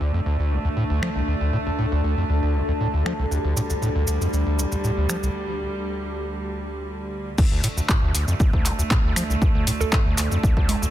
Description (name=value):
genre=acid house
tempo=118 BPM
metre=4/4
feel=straight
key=unclear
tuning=A4 = 441 Hz
part: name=rich chamber string section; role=sustained chords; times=0.0-10.9 s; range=D2 to A3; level=-29 LUFS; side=right 2 dB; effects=sidechain pumping
part: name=overdriven acid bass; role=riff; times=0.0-10.9 s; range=C2 to F3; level=-23 LUFS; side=equal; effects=distortion, digital delay
part: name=granular cloud pad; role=texture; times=0.0-5.3 s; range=D4 to A5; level=-30 LUFS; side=left 3 dB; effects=built-in reverb, sidechain pumping
part: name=punchy analog drum machine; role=drums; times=1.0-10.8 s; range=congas, crash cymbal, finger snaps, handclaps, hi-hat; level=-28 LUFS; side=equal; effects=soft clipping on snare
part: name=maracas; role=percussion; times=3.3-10.9 s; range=none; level=-31 LUFS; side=right 2 dB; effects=none
part: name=electronic kick drum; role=drums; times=7.4-10.7 s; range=none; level=-20 LUFS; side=equal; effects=none
part: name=hollow square pluck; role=melody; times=9.8-10.0 s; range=A4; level=-32 LUFS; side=right 5 dB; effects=chorus, digital delay
room=light reverb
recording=dense, heavily limited modern master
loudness=-20 LUFS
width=side -12 dB against mid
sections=0.0-7.4 A section; 7.4-10.9 B section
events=break 5.3-7.4; drop 7.4-10.9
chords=0.0 D5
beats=0.26 0.77 | 1.28 1.79 2.30 2.81 | 3.31 3.82 4.33 4.84 | 5.35 5.86 6.37 6.87 | 7.38 7.89 8.40 8.91 | 9.42 9.93 10.43